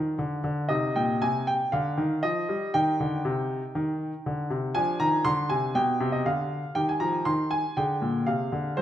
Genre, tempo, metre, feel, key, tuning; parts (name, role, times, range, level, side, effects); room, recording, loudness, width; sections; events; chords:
classical-period piano sonatina; 119 BPM; 4/4; rubato; C minor; A4 = 441 Hz
clear grand piano; solo; 0.0-8.8 s; Bb2 to C6; -24 LUFS; equal
wet recital hall reverb, RT60 1.5 s; minimal, uncompressed stereo recording; -24 LUFS; side -11 dB against mid
0.0-8.8 A section
0.0 N.C.; 0.7 Cm; 4.8 Cm11; 5.8 G/B; 6.8 Eb69; 7.8 Ddim